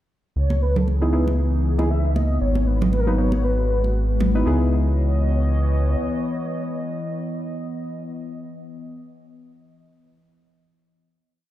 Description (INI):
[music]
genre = deep house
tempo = 117 BPM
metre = 4/4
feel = swing 56% on 16ths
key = C# minor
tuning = A4 = 443 Hz
[part]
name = mellow horn-like synth lead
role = melody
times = 0.4-8.1 s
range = G#4 to E5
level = -30 LUFS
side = left 1 dB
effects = ensemble chorus, dub echo
[part]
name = warbly tape-like pad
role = sustained chords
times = 0.7-8.1 s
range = E3 to D#5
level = -28 LUFS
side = left 2 dB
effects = chorus, built-in reverb
[part]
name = round analog bass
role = bass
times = 0.4-6.0 s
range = G#1 to C#2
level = -20 LUFS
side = equal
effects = none
[part]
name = congas and bongos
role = percussion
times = 0.5-4.3 s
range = none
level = -28 LUFS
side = right 2 dB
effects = none
[part]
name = deep mellow chord stab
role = stabs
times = 1.0-8.1 s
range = F#3 to B4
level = -26 LUFS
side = equal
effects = chorus, ping-pong delay
[sound]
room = moderate lush hall reverb, RT60 2.6 s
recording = played on a big sound system in a bare room, large studio reverb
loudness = -19 LUFS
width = side -13 dB against mid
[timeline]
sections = 0.4-4.5 breakdown; 4.5-8.6 final chord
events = none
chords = 0.4 C#m9; 2.4 G#m9; 4.5 C#m9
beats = | 0.36 0.87 1.39 1.90 | 2.41 2.92 3.44 3.95 | 4.46 4.97 5.49 6.00 | 6.51 7.03 7.54 8.05